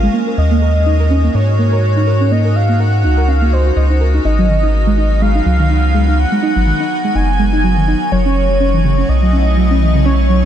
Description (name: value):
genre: IDM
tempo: 124 BPM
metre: 4/4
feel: swing 56% on 16ths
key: unclear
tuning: A4 = 438 Hz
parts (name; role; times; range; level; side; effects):
- warm velvety synth lead; melody; 0.0-10.5 s; C5 to Ab5; -20 LUFS; equal; chorus, digital delay
- icy glass pad; sustained chords; 0.0-10.5 s; Gb3 to Ab5; -21 LUFS; right 1 dB; chorus, built-in reverb, vintage 12-bit sampler grit
- soft round pluck; arpeggios; 0.0-10.4 s; Db3 to Eb5; -18 LUFS; right 2 dB; chorus, ping-pong delay
- round analog bass; bass; 0.0-10.5 s; Gb1 to Ab2; -13 LUFS; equal; none
room: light reverb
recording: dark, warm production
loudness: -11 LUFS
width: side -10 dB against mid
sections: 0.0-10.5 A section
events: none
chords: 0.1 Ebm7; 4.2 Abm9; 8.1 Gbm9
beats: | 0.38 0.86 1.35 1.83 | 2.31 2.80 3.28 3.77 | 4.25 4.73 5.22 5.70 | 6.18 6.67 7.15 7.64 | 8.12 8.60 9.09 9.57 | 10.06